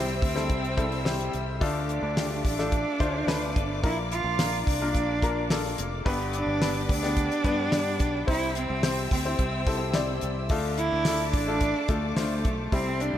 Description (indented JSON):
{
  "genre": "piano-driven pop",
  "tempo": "108 BPM",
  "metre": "4/4",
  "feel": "straight",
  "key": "unclear",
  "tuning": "A4 = 440 Hz",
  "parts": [
    { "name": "warm cello", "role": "melody", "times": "0.0-13.2 s", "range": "A3 to F4", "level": "-30 LUFS", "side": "right 2 dB", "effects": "slapback echo" },
    { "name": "bright upright piano", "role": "accompaniment", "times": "0.0-13.2 s", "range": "G2 to D5", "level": "-30 LUFS", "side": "left 3 dB", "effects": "slapback echo" },
    { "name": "rich studio string section", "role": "sustained chords", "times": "0.0-13.2 s", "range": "Bb3 to E6", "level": "-37 LUFS", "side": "left 1 dB", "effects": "none" },
    { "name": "fingered electric bass", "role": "bass", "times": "0.0-13.2 s", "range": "F1 to G2", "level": "-32 LUFS", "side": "equal", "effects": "none" },
    { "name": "damped 70s drum kit", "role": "drums", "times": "0.2-13.1 s", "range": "hi-hat, kick drum, snare drum", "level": "-28 LUFS", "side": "equal", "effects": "none" }
  ],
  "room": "moderate lush hall reverb, RT60 2.1 s",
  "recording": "big arena sound",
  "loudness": "-24 LUFS",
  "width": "side -11 dB against mid",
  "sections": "0.0-13.2 A section",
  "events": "none",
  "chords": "0.0 C; 1.6 Dm; 3.8 Bb; 6.1 G; 8.3 C; 10.5 Dm"
}